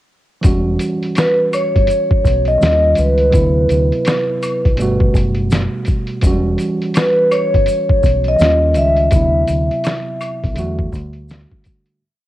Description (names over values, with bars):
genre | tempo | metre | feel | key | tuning
lo-fi hip hop | 83 BPM | 4/4 | swing 62% on 16ths | E dorian | A4 = 442 Hz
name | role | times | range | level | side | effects
tine electric piano | accompaniment | 0.4-12.0 s | B2 to F#4 | -21 LUFS | right 2 dB | cassette tape
deep dub fingered electric bass | bass | 0.4-11.4 s | E1 to E2 | -18 LUFS | equal | none
lo-fi sampler-style drum kit | drums | 0.4-12.0 s | hi-hat, kick drum, snare drum | -16 LUFS | equal | cassette tape
maracas and woodblock | percussion | 0.4-11.9 s | none | -32 LUFS | left 2 dB | none
vibraphone with soft mallets | melody | 1.2-10.9 s | B4 to E5 | -15 LUFS | equal | none
room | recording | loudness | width
light reverb | home recording on cassette | -13 LUFS | side -14 dB against mid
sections
0.4-12.0 A section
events
fade-out 9.1-12.0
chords
0.4 Em69; 2.6 D#9; 3.3 D13; 4.8 Gmaj9; 6.2 Em69; 8.4 D#9; 9.1 D13; 10.6 Em11